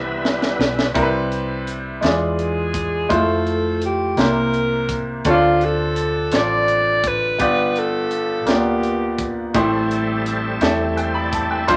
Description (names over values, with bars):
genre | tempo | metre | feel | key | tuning
slow gospel | 56 BPM (dotted quarters) | 6/8 | straight | C major | A4 = 440 Hz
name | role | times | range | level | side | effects
bright upright piano | accompaniment | 0.0-11.8 s | G2 to B5 | -23 LUFS | equal | none
bright tonewheel organ | sustained chords | 0.0-0.9, 9.5-11.8 s | G3 to E5 | -27 LUFS | equal | fast rotary speaker, overdrive, chorus vibrato
hollow-body short-scale fingered electric bass | bass | 0.0-11.8 s | F1 to F2 | -30 LUFS | equal | none
tight funk drum kit | drums | 0.2-11.8 s | hi-hat, kick drum, snare drum | -25 LUFS | equal | none
breathy alto saxophone | melody | 2.0-9.3 s | F4 to D5 | -23 LUFS | equal | none
room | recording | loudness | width
wet club reverb, RT60 0.6 s | none | -19 LUFS | mono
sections
1.0-11.8 A section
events
drum fill 0.0-1.0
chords
0.0 Cmaj7; 2.0 E7b9; 3.1 Fmaj7; 4.2 C7; 5.2 Dm7; 7.4 G7; 9.5 Am7